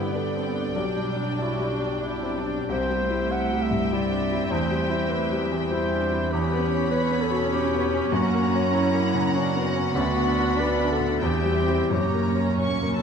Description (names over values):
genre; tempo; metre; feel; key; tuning
classical, romantic movement for piano and orchestra; 84-102 BPM; 3/4; rubato; unclear; A4 = 440 Hz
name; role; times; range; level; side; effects
clear baby grand piano; melody; 0.0-13.0 s; B1 to D5; -25 LUFS; left 2 dB; none
rich studio violin section; melody; 0.0-13.0 s; G5 to C#6; -35 LUFS; equal; none
warm clarinet; second line; 0.0-13.0 s; E4 to F#5; -29 LUFS; left 1 dB; none
warm studio violin section; second line; 0.0-13.0 s; A4 to F#5; -34 LUFS; left 2 dB; none
warm studio viola section; accompaniment; 0.0-13.0 s; B3 to D4; -33 LUFS; right 3 dB; none
dark studio cello section; bass; 0.0-13.0 s; G3 to E4; -31 LUFS; right 4 dB; none
warm studio double bass section; bass; 0.0-13.0 s; B1 to G2; -31 LUFS; right 5 dB; none
timpani; percussion; 11.9-13.0 s; F#2; -35 LUFS; equal; none
warm oboe; second line; 13.0 s; A4; -40 LUFS; equal; none
room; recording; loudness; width
moderate scoring stage reverb, RT60 2.0 s; none; -22 LUFS; side -6 dB against mid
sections
0.0-13.0 A section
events
timpani fill 11.9-13.0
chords
0.0 G; 0.8 G/B; 2.7 C; 4.5 C/E; 6.3 C#m7b5/E; 8.1 F#; 10.0 Bm/D; 11.2 C/E; 11.9 F#